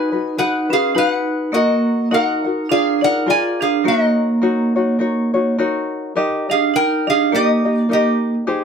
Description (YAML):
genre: Hawaiian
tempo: 104 BPM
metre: 4/4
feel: swing 57% on 8ths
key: Eb minor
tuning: A4 = 439 Hz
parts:
  - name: lap resonator guitar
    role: melody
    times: 0.0-8.3 s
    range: Gb4 to Ab5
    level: -18 LUFS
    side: right 1 dB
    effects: none
  - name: vibraphone with hard mallets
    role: second line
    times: 0.0-8.3 s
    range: Bb3 to F4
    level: -19 LUFS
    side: right 2 dB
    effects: none
  - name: tenor ukulele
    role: accompaniment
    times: 0.0-8.6 s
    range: Eb4 to Gb5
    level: -21 LUFS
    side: left 4 dB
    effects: none
room: light reverb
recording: none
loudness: -15 LUFS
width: side -6 dB against mid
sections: 0.0-6.2 A section; 6.2-8.6 B section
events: none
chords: 0.0 Abm7; 1.5 Ebm/Bb; 2.7 Bb7; 3.8 Ebm7; 6.2 Eb